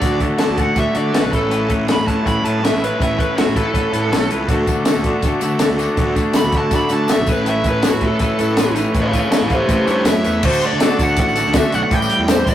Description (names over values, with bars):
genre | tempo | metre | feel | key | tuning
indie rock | 162 BPM | 4/4 | straight | unclear | A4 = 439 Hz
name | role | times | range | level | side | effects
bluesy overdriven lead guitar | melody | 0.0-12.5 s | F#4 to B5 | -21 LUFS | right 1 dB | distortion, digital delay
biting overdriven guitar | riff | 0.0-12.5 s | A2 to G4 | -23 LUFS | right 4 dB | none
twangy electric guitar | riff | 0.0-12.5 s | A2 to B4 | -21 LUFS | left 3 dB | none
fuzz fingered electric bass | bass | 0.0-12.5 s | A1 to D3 | -24 LUFS | equal | overdrive
compact cocktail drum kit | drums | 0.0-12.5 s | crash cymbal, hi-hat, kick drum, snare drum, tambourine | -18 LUFS | equal | none
bright tonewheel organ | sustained chords | 4.5-10.4 s | A4 to D6 | -30 LUFS | equal | none
tambourine | percussion | 4.7-12.5 s | none | -35 LUFS | left 4 dB | none
room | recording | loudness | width
moderate studio reverb, RT60 0.6 s | rough rehearsal-room recording, warm saturation | -14 LUFS | side -11 dB against mid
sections
0.0-10.4 A section; 10.4-12.5 B section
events
lead electric guitar solo 0.0-10.4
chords
0.0 D; 1.3 Aadd9; 4.5 D; 7.3 Aadd9; 10.4 D; 11.9 Am7